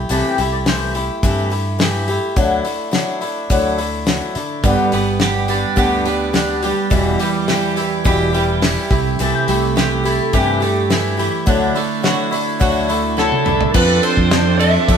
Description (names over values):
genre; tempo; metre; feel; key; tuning
folk rock and heartland rock; 105 BPM; 4/4; straight; unclear; A4 = 441 Hz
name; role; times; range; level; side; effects
picked swing-style acoustic guitar; accompaniment; 0.0-15.0 s; E2 to A4; -19 LUFS; left 2 dB; none
fingered electric bass; bass; 0.0-15.0 s; E1 to D3; -21 LUFS; equal; none
mandolin; second line; 0.1-0.9, 9.2-12.0 s; D4 to A5; -24 LUFS; left 6 dB; none
damped 70s drum kit; drums; 0.1-15.0 s; crash cymbal, hi-hat, kick drum, ride cymbal, snare drum, toms; -20 LUFS; equal; none
twelve-string electric guitar; riff; 4.6-15.0 s; E2 to A4; -20 LUFS; right 8 dB; spring reverb
overdriven slide guitar; melody; 13.2-15.0 s; A4 to E5; -17 LUFS; equal; none
bright upright piano; accompaniment; 13.7-15.0 s; F4 to D5; -29 LUFS; left 6 dB; none
tonewheel organ; sustained chords; 13.7-15.0 s; F4 to D6; -26 LUFS; equal; overdrive, chorus vibrato, slow rotary speaker
room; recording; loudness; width
wet stone room reverb, RT60 1.0 s; band playing live in one room; -14 LUFS; side -7 dB against mid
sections
0.0-13.8 A section; 13.8-15.0 B section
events
drum fill 13.2-13.8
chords
0.0 C6; 2.4 Dadd9; 4.6 G; 6.9 Em; 8.9 C6; 11.5 Dadd9; 13.8 F6